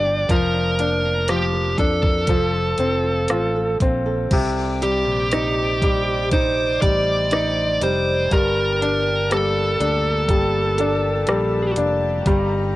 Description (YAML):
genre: pop ballad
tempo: 60 BPM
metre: 4/4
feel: straight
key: unclear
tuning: A4 = 440 Hz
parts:
  - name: smooth overdriven lead guitar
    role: melody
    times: 0.0-11.7 s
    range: G4 to D5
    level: -22 LUFS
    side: right 1 dB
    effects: none
  - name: bright grand piano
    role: accompaniment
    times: 0.0-12.8 s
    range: C3 to F4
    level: -23 LUFS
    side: left 2 dB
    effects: cassette tape
  - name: flamenco guitar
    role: arpeggios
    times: 0.0-12.8 s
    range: G2 to Bb4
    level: -31 LUFS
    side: right 3 dB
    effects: cassette tape, tape echo
  - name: fingered electric bass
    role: bass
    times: 0.0-12.8 s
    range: F1 to F2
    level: -25 LUFS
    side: equal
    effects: none
  - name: smooth R&B drum kit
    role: drums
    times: 0.3-12.5 s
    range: crash cymbal, hi-hat, kick drum, rim click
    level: -21 LUFS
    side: equal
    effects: cassette tape
  - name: warm studio string section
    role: sustained chords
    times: 4.3-12.8 s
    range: Bb3 to D6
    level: -30 LUFS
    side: equal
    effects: cassette tape
room: light reverb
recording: home recording on cassette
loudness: -17 LUFS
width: side -16 dB against mid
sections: 0.0-4.3 A section; 4.3-12.8 B section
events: none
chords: 0.3 Bb/F; 2.3 F; 4.3 Cmadd9; 8.3 Gmadd9